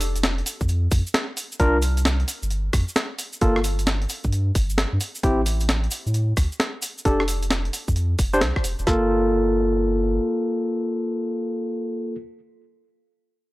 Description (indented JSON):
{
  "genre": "UK garage, two-step garage",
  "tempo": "132 BPM",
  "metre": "4/4",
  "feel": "swing 65% on 16ths",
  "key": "G minor",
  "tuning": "A4 = 439 Hz",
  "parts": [
    { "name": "saturated sub bass", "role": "bass", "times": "0.0-10.2 s", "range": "F1 to A2", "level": "-23 LUFS", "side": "equal", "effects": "none" },
    { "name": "breakbeat sampler-style drum kit", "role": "drums", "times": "0.0-8.8 s", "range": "hi-hat, rim click, snare drum", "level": "-25 LUFS", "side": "equal", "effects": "none" },
    { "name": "cabasa", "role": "percussion", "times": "0.0-8.9 s", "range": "none", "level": "-33 LUFS", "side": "right 1 dB", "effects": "none" },
    { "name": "garage drum kit", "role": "drums", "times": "0.6-9.0 s", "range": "kick drum, snare drum", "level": "-21 LUFS", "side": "equal", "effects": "none" },
    { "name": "barky tine electric piano", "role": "stabs", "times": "1.6-12.2 s", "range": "Bb3 to C5", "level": "-22 LUFS", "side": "equal", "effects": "overdrive, tape echo" }
  ],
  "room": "little or no reverb",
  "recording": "dry, gritty hardware recording",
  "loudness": "-20 LUFS",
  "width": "side -19 dB against mid",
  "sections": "0.0-8.9 A section; 8.9-12.5 B section",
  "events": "none",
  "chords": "0.0 N.C.; 1.6 Csus4; 3.4 N.C.; 8.9 Gm7"
}